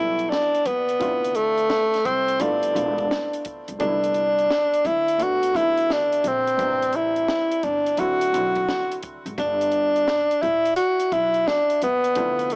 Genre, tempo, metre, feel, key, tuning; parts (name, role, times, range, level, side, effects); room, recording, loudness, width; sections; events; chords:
hip hop, jazz-hop; 86 BPM; 4/4; swing 66% on 16ths; G major; A4 = 442 Hz
breathy tenor saxophone; melody; 0.0-12.6 s; A3 to F#4; -20 LUFS; equal; cassette tape, tape echo
warm upright piano; accompaniment; 0.0-12.6 s; B2 to B4; -32 LUFS; right 1 dB; cassette tape
upright bass; bass; 0.0-12.6 s; E1 to E2; -33 LUFS; equal; tube saturation
compact cocktail drum kit; drums; 0.2-12.6 s; hi-hat, kick drum, snare drum; -32 LUFS; equal; cassette tape
light reverb; home recording on cassette, small speaker sound; -19 LUFS; side -31 dB against mid
0.0-9.4 A section; 9.4-12.6 A section
0.0 G69; 1.0 Dm9; 2.4 G13; 3.8 Cmaj13; 6.6 Am11; 8.0 D9; 9.4 Gadd9